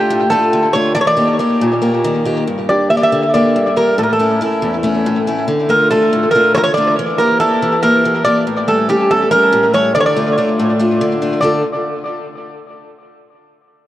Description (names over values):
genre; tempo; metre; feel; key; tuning
greek folk, Greek bouzouki band; 281 BPM (eighths); 7/8; straight; D harmonic minor; A4 = 444 Hz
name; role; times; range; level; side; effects
Greek bouzouki; melody; 0.0-11.6 s; G4 to E5; -14 LUFS; equal; tape echo
picked steel-string acoustic guitar; accompaniment; 0.0-11.6 s; E2 to A4; -16 LUFS; left 1 dB; tape echo
room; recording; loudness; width
moderate echo chamber reverb, RT60 2.4 s; echo-heavy mix, cassette tape; -12 LUFS; side -14 dB against mid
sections
0.0-11.4 A section; 11.4-12.9 B section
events
none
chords
0.0 Dm; 1.0 Eb; 2.5 Gm; 4.0 A; 5.5 Dm; 7.0 Edim; 8.5 A7; 9.9 Dm